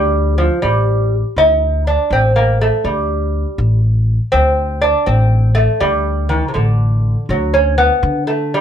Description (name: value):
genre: Persian modal ensemble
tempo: 81 BPM (dotted quarters)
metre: 6/8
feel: straight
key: D dastgah shur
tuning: A4 = 439 Hz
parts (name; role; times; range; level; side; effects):
- lute; melody; 0.0-8.6 s; C3 to Eb4+45c; -15 LUFS; right 1 dB; plate reverb
- upright bass; bass; 0.0-8.6 s; A1 to D3; -15 LUFS; equal; none
room: light reverb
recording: dark, warm production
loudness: -12 LUFS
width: side -9 dB against mid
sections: 0.0-7.3 A section; 7.3-8.6 B section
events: none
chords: none